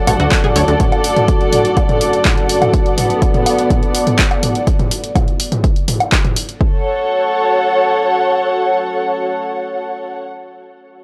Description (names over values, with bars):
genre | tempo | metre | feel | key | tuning
melodic techno | 124 BPM | 4/4 | straight | F# minor | A4 = 440 Hz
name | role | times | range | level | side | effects
deep dark ambient pad | sustained chords | 0.0-10.1 s | B3 to D5 | -23 LUFS | equal | chorus, built-in reverb, sidechain pumping
analog drone | drone | 0.0-2.8 s | F#2 to C#3 | -32 LUFS | equal | none
muted studio string section | texture | 0.0-10.2 s | B3 to F#5 | -19 LUFS | equal | sidechain pumping
tight sequenced synth | arpeggios | 0.1-0.7 s | F#4 to C#6 | -26 LUFS | equal | none
plucky analog bass | bass | 0.1-0.8 s | A1 to D2 | -17 LUFS | equal | sidechain pumping
punchy analog drum machine | drums | 0.1-6.6 s | handclaps, hi-hat, toms, woodblock | -20 LUFS | equal | overdrive
electronic kick drum | drums | 0.3-6.7 s | none | -18 LUFS | equal | none
room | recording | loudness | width
digital ambience | dry, gritty hardware recording | -15 LUFS | mono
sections
0.0-6.6 A section; 6.6-10.5 B section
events
drop 0.0-6.6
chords
0.0 D; 2.7 Bm7; 6.6 F#m